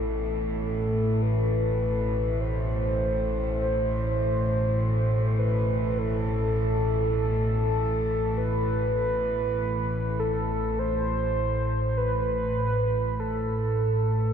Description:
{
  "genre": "dark ambient drone",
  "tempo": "free time",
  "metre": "none",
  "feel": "none",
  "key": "A minor",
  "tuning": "A4 = 441 Hz",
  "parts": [
    { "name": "mellow horn-like synth lead", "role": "melody", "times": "0.0-14.3 s", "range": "A4 to C5", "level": "-28 LUFS", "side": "equal", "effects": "chorus, shimmer reverb, ping-pong delay" },
    { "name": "warm studio cello section", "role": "sustained chords", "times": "0.0-14.3 s", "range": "A2 to E3", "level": "-36 LUFS", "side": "equal", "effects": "shimmer reverb" },
    { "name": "analog drone", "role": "drone", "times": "0.0-14.3 s", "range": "A1 to A2", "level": "-26 LUFS", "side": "equal", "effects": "chorus" }
  ],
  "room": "wet cathedral reverb, RT60 5.7 s",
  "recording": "none",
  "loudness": "-24 LUFS",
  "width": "side -8 dB against mid",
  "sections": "0.0-14.3 A section",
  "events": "fade-out on cello section 0.0-14.3",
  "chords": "0.0 Amadd9"
}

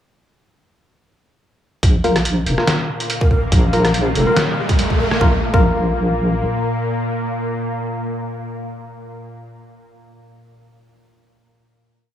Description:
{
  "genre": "deep dubstep",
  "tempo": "142 BPM",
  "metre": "4/4",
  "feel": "swing 55% on 16ths, half-time",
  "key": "unclear",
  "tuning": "A4 = 438 Hz",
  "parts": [
    { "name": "bowed-like drone", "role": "sustained chords", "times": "2.6-9.3 s", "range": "Bb2 to Bb3", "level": "-24 LUFS", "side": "left 1 dB", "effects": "built-in reverb" },
    { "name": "deep soft wobble bass", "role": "bass", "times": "1.8-6.4 s", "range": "F1 to Bb1", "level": "-18 LUFS", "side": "equal", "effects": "chorus" },
    { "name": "electronic kick drum", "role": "drums", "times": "1.8-5.7 s", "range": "none", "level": "-16 LUFS", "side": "equal", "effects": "none" },
    { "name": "trip hop sampler-style drum kit", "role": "drums", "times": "1.8-5.2 s", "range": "hi-hat, rim click, snare drum", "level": "-21 LUFS", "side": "equal", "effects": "overdrive" },
    { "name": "riser", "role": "sound effects", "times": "3.0-5.2 s", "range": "none", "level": "-26 LUFS", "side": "right 1 dB", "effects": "none" },
    { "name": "percussive organ stab", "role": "stabs", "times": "2.0-9.6 s", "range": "Bb3 to Bb4", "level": "-23 LUFS", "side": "left 2 dB", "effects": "chorus, dub echo" },
    { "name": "breathy bright low ney", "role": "melody", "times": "3.2-5.2 s", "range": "Bb4", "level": "-25 LUFS", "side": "equal", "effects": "dub echo" }
  ],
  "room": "moderate spring reverb, RT60 1.7 s, digital ambience",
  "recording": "small room reverb",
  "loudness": "-15 LUFS",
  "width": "side -10 dB against mid",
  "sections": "1.8-5.2 build; 5.2-8.6 final chord",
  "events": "build-up 1.8-5.2; filter sweep on synth stab 1.8-5.2; riser 3.0-5.2",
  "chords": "1.8 Bb5"
}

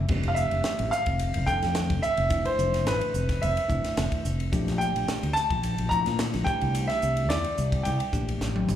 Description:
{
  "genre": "electric jazz fusion",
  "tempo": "108 BPM",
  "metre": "4/4",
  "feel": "swing 53% on 16ths",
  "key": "unclear",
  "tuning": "A4 = 440 Hz",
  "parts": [
    { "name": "bell-like tine electric piano", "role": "accompaniment", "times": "0.0-8.7 s", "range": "E3 to A4", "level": "-34 LUFS", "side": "left 2 dB", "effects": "none" },
    { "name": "fretless electric bass", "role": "bass", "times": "0.0-8.8 s", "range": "F1 to Bb2", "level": "-28 LUFS", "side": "equal", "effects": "ensemble chorus" },
    { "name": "crisp fusion drum kit", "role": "drums", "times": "0.1-8.8 s", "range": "crash cymbal, hi-hat, kick drum, ride cymbal, snare drum, toms", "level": "-31 LUFS", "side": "equal", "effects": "none" },
    { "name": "bright grand piano", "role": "melody", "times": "0.3-8.6 s", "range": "B4 to Bb5", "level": "-28 LUFS", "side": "right 1 dB", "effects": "slapback echo, tape echo" }
  ],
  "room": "light reverb, studio reverb",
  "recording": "live gig heard through the venue's PA, club reverb",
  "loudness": "-24 LUFS",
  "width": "side -10 dB against mid",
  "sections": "0.1-8.8 A section",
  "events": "drum fill 8.4-8.8",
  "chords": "0.1 Fmaj9; 4.5 Bbmaj7; 6.5 C69"
}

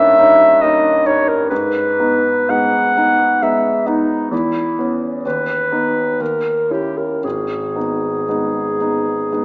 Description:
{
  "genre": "classical, romantic duo for clarinet and grand piano",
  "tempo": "57-69 BPM",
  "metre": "3/4",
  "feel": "rubato",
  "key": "G# minor",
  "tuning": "A4 = 439 Hz",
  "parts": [
    { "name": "warm clarinet", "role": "melody", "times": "0.0-9.4 s", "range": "D#4 to F#5", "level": "-14 LUFS", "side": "equal", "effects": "none" },
    { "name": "clear grand piano", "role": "accompaniment", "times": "0.0-9.4 s", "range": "G#1 to E4", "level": "-19 LUFS", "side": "equal", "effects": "none" }
  ],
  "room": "wet recital hall reverb, RT60 1.7 s",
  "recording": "small speaker sound",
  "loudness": "-13 LUFS",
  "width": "side -38 dB against mid",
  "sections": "0.0-9.4 A section",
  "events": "none",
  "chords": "0.0 D#7/G; 1.5 G#m; 4.3 E5; 5.2 B/D#; 6.2 D#5; 7.2 G#m"
}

